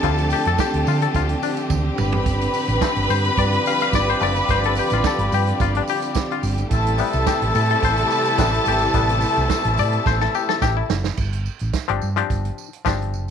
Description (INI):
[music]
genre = disco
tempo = 108 BPM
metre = 4/4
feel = straight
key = unclear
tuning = A4 = 440 Hz
[part]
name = clear studio string section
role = second line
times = 0.0-10.9 s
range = A4 to B5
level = -23 LUFS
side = equal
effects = none
[part]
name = muted clav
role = accompaniment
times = 0.0-13.3 s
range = C3 to F5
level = -24 LUFS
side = left 15 dB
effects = none
[part]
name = clear studio string section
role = sustained chords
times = 0.0-11.1 s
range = C3 to G4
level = -26 LUFS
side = equal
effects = none
[part]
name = hollow-body short-scale fingered electric bass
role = bass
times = 0.0-13.3 s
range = F#1 to D3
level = -22 LUFS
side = right 1 dB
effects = none
[part]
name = vintage drum kit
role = drums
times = 0.0-13.1 s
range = crash cymbal, hi-hat, kick drum, snare drum, toms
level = -26 LUFS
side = right 5 dB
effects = none
[part]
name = tambourine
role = percussion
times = 0.0-13.3 s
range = none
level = -39 LUFS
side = right 18 dB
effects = none
[part]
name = warm horn section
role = stabs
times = 3.4-10.9 s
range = G3 to E5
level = -26 LUFS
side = left 2 dB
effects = none
[sound]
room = light reverb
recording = 1960s-style stereo with parts hard left and right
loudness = -18 LUFS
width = side -8 dB against mid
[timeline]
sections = 0.0-11.2 A section; 11.2-13.3 B section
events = clav solo 0.0-11.2; drum fill 1.7-2.3, 10.1-11.2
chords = 0.0 Dm7; 2.0 G7sus4; 6.7 Am7; 11.2 G7sus4